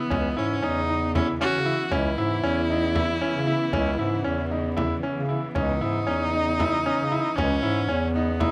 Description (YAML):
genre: contemporary instrumental, chamber music in an uneven meter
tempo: 232 BPM (eighths)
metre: 7/8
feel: straight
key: C# minor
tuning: A4 = 441 Hz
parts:
  - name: rich viola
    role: second line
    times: 0.0-8.5 s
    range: B3 to F#4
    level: -30 LUFS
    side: equal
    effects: none
  - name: warm symphonic string section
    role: sustained chords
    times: 0.0-8.5 s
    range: C#3 to B3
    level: -36 LUFS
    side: equal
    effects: none
  - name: bright grand piano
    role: arpeggios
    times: 0.1-8.5 s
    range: C#4 to E4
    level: -30 LUFS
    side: equal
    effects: none
  - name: mellow bass clarinet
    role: bass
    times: 0.1-8.5 s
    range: C#2 to C#3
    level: -30 LUFS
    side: equal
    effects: none
  - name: frame drum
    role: percussion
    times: 0.1-8.5 s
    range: none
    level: -32 LUFS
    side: equal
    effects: none
room: light reverb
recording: close, detailed microphones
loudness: -25 LUFS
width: mono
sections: 0.0-8.5 A section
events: none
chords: 0.0 C#m7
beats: | 0.12 0.38 0.64 0.90 1.16 1.41 1.67 | 1.93 2.18 2.44 2.70 2.95 3.21 3.47 | 3.73 3.99 4.25 4.51 4.77 5.04 5.30 | 5.56 5.82 6.08 6.34 6.60 6.86 7.12 | 7.37 7.63 7.89 8.15 8.40